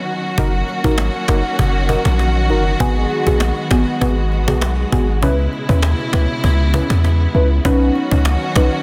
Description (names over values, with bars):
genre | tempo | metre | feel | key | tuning
dancehall | 99 BPM | 4/4 | straight | G# minor | A4 = 442 Hz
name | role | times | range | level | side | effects
warm studio string section | sustained chords | 0.0-8.8 s | B2 to F#4 | -24 LUFS | equal | none
deep mellow chord stab | accompaniment | 0.4-8.7 s | B3 to B4 | -23 LUFS | equal | chorus, phaser
hard-hitting 808-style bass | bass | 0.4-8.7 s | F#1 to E2 | -18 LUFS | equal | none
cajon | drums | 0.4-8.7 s | none | -25 LUFS | equal | none
room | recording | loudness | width
light reverb, small room reverb | dense, heavily limited modern master | -16 LUFS | mono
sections
0.0-8.8 A section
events
break 0.0-0.4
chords
0.4 F#6; 2.8 G#m7; 5.2 C#m7; 7.6 Badd9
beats
| 0.38 0.98 1.59 2.19 | 2.80 3.41 4.01 4.62 | 5.22 5.83 6.44 7.04 | 7.65 8.26